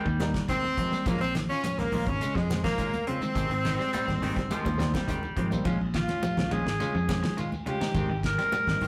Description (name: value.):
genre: afrobeat.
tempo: 105 BPM.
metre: 4/4.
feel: straight.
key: Bb dorian.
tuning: A4 = 440 Hz.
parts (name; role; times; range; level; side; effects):
clear baritone saxophone; second line; 0.0-5.7 s; Eb3 to G3; -38 LUFS; equal; none.
semi-hollow electric guitar; stabs; 0.0-8.9 s; Eb3 to G4; -40 LUFS; equal; none.
electric guitar at the edge of break-up; arpeggios; 0.1-8.9 s; Db3 to G3; -37 LUFS; equal; none.
modern bright fingered electric bass; bass; 0.1-8.9 s; G1 to F2; -34 LUFS; equal; none.
damped 70s drum kit; drums; 0.1-8.9 s; hi-hat, kick drum, ride cymbal, snare drum; -36 LUFS; equal; none.
shekere; percussion; 0.1-8.9 s; none; -47 LUFS; equal; none.
barky reed electric piano; accompaniment; 0.2-8.9 s; Db3 to Eb4; -38 LUFS; equal; medium tremolo.
congas; percussion; 0.2-8.9 s; none; -39 LUFS; equal; none.
bright tenor saxophone; melody; 0.5-5.0 s; Ab3 to Db4; -33 LUFS; equal; none.
brilliant trumpet; second line; 0.5-5.0 s; Ab3 to Db4; -39 LUFS; equal; none.
clear alto saxophone; melody; 6.0-8.9 s; F4 to Bb4; -32 LUFS; equal; none.
room: wet studio reverb, RT60 0.6 s.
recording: rough rehearsal-room recording.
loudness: -28 LUFS.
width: mono.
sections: 0.0-5.7 A section; 5.7-8.9 B section.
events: drum fill 4.5-5.7; alto saxophone solo 5.7-8.9.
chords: 0.0 Abmaj7; 1.1 Bbm7; 3.4 Abmaj7; 5.7 Bbm7; 7.9 Abmaj7.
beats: 0.49 | 1.06 1.64 2.21 2.78 | 3.36 3.93 4.50 5.08 | 5.65 6.23 6.80 7.37 | 7.95 8.52.